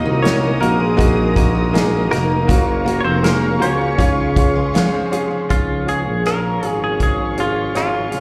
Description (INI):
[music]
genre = pop ballad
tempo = 80 BPM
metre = 4/4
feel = straight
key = Db major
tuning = A4 = 444 Hz
[part]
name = direct-recorded clean electric guitar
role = melody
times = 0.0-8.2 s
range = Ab3 to Eb5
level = -24 LUFS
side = equal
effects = slapback echo
[part]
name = bright upright piano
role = accompaniment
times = 0.0-8.2 s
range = Ab2 to Db5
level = -24 LUFS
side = equal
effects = slapback echo
[part]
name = muted studio string section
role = sustained chords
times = 0.0-8.2 s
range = Ab4 to Eb6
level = -30 LUFS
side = equal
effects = none
[part]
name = picked steel-string acoustic guitar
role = arpeggios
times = 0.0-8.2 s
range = Db3 to Gb4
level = -28 LUFS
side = equal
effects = none
[part]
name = mellow tuba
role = bass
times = 0.1-8.2 s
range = F1 to Db2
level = -22 LUFS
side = equal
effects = none
[part]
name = natural country drum kit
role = drums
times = 0.2-8.2 s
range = hi-hat, kick drum, rim click, snare drum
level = -21 LUFS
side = equal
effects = none
[sound]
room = light reverb, small room reverb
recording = live gig heard through the venue's PA, club reverb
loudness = -17 LUFS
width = mono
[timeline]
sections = 0.0-5.5 A section; 5.5-8.2 B section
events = none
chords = 0.0 Ebm; 2.5 Gbmaj7; 4.0 Dbmaj7; 5.5 Db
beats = 0.24 0.99 1.74 | 2.49 3.23 3.98 4.74 | 5.50 6.25 7.00 7.75